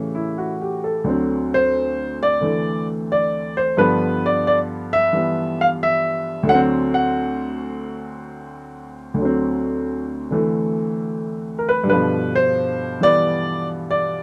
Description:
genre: solo jazz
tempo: 89 BPM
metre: 4/4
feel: swing 67% on 8ths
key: D mixolydian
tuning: A4 = 440 Hz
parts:
  - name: warm upright piano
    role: solo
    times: 0.0-14.2 s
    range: D2 to F#5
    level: -21 LUFS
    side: equal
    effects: none
room: little or no reverb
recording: close, detailed microphones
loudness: -20 LUFS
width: mono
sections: 0.0-1.1 A section; 1.1-14.2 A section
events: none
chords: 0.0 A7; 1.1 D7; 3.8 G7; 6.5 D7; 11.9 G7

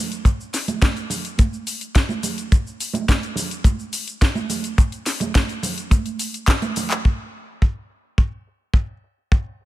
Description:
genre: nu-disco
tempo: 106 BPM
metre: 4/4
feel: straight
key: none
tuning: none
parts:
  - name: house drum kit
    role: drums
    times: 0.1-9.7 s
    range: handclaps, hi-hat, shaker, snare drum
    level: -25 LUFS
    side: left 1 dB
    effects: overdrive, low-pass filter on hats, low-pass filter on perc, low-pass filter on snare
  - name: kick drum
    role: drums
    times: 0.2-9.4 s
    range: none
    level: -16 LUFS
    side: equal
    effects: none
  - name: congas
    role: percussion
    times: 0.7-6.9 s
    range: none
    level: -28 LUFS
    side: right 6 dB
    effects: none
room: studio ambience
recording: none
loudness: -19 LUFS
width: side -16 dB against mid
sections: 0.0-7.0 A section; 7.0-9.7 B section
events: drum fill 6.5-7.0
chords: none

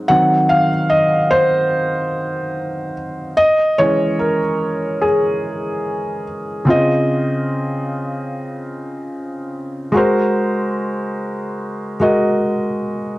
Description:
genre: hip hop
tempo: 73 BPM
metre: 4/4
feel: swing 66% on 16ths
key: unclear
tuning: A4 = 440 Hz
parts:
  - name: felt-muted upright piano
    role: solo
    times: 0.0-13.2 s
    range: Db3 to Gb5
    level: -16 LUFS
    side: equal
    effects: none
room: wet studio reverb, RT60 0.7 s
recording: none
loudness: -15 LUFS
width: side -18 dB against mid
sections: 0.0-6.7 A section; 6.7-13.2 B section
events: felt piano solo 0.0-6.7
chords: 0.1 Ebm6; 3.4 E6; 6.7 Dbmaj9; 10.0 Ab9

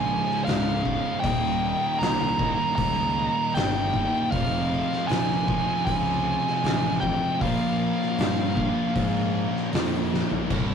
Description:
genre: stoner and doom metal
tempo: 78 BPM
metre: 4/4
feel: straight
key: unclear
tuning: A4 = 440 Hz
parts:
  - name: fuzz lead guitar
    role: melody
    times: 0.0-9.7 s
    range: F5 to Bb5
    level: -27 LUFS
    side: right 2 dB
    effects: distortion
  - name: thick fuzz guitar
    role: riff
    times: 0.0-10.7 s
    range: C2 to Bb3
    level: -30 LUFS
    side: left 8 dB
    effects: distortion
  - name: thick fuzz guitar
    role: riff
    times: 0.0-10.7 s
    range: C2 to Bb3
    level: -31 LUFS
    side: right 4 dB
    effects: distortion
  - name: tight distorted guitar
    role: riff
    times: 0.0-10.7 s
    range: C2 to Bb4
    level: -32 LUFS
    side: equal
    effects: distortion
  - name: fuzz fingered electric bass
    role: bass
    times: 0.0-10.7 s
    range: C1 to Ab2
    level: -31 LUFS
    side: equal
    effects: overdrive, tube saturation
  - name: oversized low-tuned drum kit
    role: drums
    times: 0.3-10.7 s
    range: crash cymbal, hi-hat, kick drum, snare drum, toms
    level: -29 LUFS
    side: left 1 dB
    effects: none
room: light reverb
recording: rough rehearsal-room recording, warm saturation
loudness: -22 LUFS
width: side -7 dB against mid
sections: 0.0-10.5 A section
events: drum fill 10.1-10.5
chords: 0.0 Db; 1.2 Eb; 4.3 Fm; 7.4 Bbm

